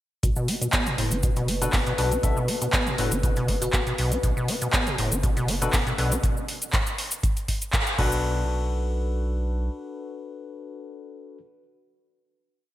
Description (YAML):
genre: acid house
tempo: 120 BPM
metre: 4/4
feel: swing 53% on 16ths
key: B minor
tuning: A4 = 440 Hz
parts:
  - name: warbly tape-like pad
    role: sustained chords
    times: 0.9-6.2 s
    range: B4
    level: -34 LUFS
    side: left 2 dB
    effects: chorus, built-in reverb, sidechain pumping
  - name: deep acid bass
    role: riff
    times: 0.2-8.4 s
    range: A2 to D4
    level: -28 LUFS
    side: equal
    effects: tube saturation, cassette tape, sidechain pumping, digital delay
  - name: round analog bass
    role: bass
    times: 0.2-9.7 s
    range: F#1 to B1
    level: -29 LUFS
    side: equal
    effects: sidechain pumping
  - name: booming analog drum machine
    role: drums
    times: 0.2-8.1 s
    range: crash cymbal, handclaps, hi-hat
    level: -28 LUFS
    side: equal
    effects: gated reverb
  - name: electronic kick drum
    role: drums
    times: 0.2-8.1 s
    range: none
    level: -26 LUFS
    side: equal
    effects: none
  - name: cabasa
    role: percussion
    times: 0.2-8.2 s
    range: none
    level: -34 LUFS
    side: left 1 dB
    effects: none
  - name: barky tine electric piano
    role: stabs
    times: 1.6-11.4 s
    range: D4 to E5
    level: -32 LUFS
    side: left 3 dB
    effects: lush chorus, digital delay
  - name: bell-like FM electric piano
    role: melody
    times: 3.6-3.8 s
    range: F#4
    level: -35 LUFS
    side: left 1 dB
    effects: chorus, tremolo, digital delay
room: moderate lush hall reverb, RT60 2.4 s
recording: bright 1980s-style digital production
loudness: -22 LUFS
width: side -14 dB against mid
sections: 0.2-8.2 groove; 8.2-12.2 final hit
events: band accent 7.7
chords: 0.2 Bm7